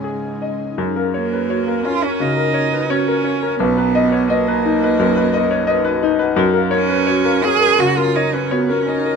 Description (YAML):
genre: neoclassical piano and strings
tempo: 86 BPM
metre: 4/4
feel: rubato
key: F# major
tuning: A4 = 442 Hz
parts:
  - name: rich cello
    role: second line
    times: 0.0-9.2 s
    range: G#3 to G#4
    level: -19 LUFS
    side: right 7 dB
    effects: none
  - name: bright concert grand piano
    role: accompaniment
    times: 0.0-9.2 s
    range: B1 to D#5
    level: -18 LUFS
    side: left 4 dB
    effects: none
  - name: ethereal airy pad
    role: sustained chords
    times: 0.0-9.2 s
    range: C#4 to A#4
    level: -29 LUFS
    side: equal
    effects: none
  - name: marimba with medium mallets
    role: arpeggios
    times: 0.8-9.2 s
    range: F#4 to A#5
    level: -23 LUFS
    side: right 2 dB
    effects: none
room: little or no reverb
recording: minimal, uncompressed stereo recording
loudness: -15 LUFS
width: side -5 dB against mid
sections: 0.8-9.2 A section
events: none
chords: 0.0 C#sus2; 0.8 F#maj7; 3.6 Bmaj7; 6.4 F#maj7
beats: 0.04 | 0.78 1.49 2.20 2.90 | 3.60 4.30 5.00 5.70 | 6.39 7.09 7.80 8.52